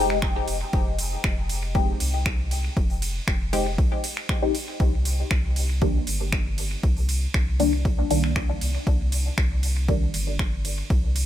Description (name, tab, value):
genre	dub techno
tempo	118 BPM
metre	4/4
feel	straight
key	F dorian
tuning	A4 = 440 Hz
part	filtered dub chord stab	stabs	0.0-11.3 s	Eb3 to G4	-28 LUFS	left 2 dB	phaser, sidechain pumping, dub echo
part	soft dub sub bass	bass	0.0-11.3 s	F1 to C2	-26 LUFS	equal	sidechain pumping
part	deep house drum kit	drums	0.1-11.3 s	finger snaps, hi-hat, ride cymbal	-31 LUFS	right 1 dB	dub echo
part	electronic kick drum	drums	0.2-11.0 s	none	-24 LUFS	equal	none
room	digital ambience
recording	none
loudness	-22 LUFS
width	side -12 dB against mid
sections	0.0-11.3 A section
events	filter sweep on synth stab 0.0-11.3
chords	0.0 Fm7; 4.8 Cm7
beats	0.23 | 0.73 1.24 1.75 2.26 | 2.77 3.28 3.79 4.29 | 4.80 5.31 5.82 6.33 | 6.84 7.34 7.85 8.36 | 8.87 9.38 9.89 10.39 | 10.90